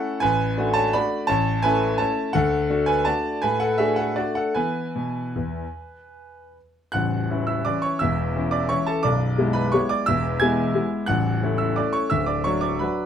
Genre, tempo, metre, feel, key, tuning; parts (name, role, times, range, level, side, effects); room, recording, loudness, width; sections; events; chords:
classical, piano waltz; 144-182 BPM; 3/4; rubato; A major; A4 = 440 Hz
clear concert grand piano; solo; 0.0-13.1 s; A0 to G#6; -20 LUFS; equal
light reverb; dark, warm production; -20 LUFS; side -8 dB against mid
0.0-6.9 A section; 6.9-13.1 B section
0.2 D/A; 1.3 A; 2.4 D; 4.6 E; 6.9 A; 9.0 E7/B; 11.1 A; 12.1 Bm/D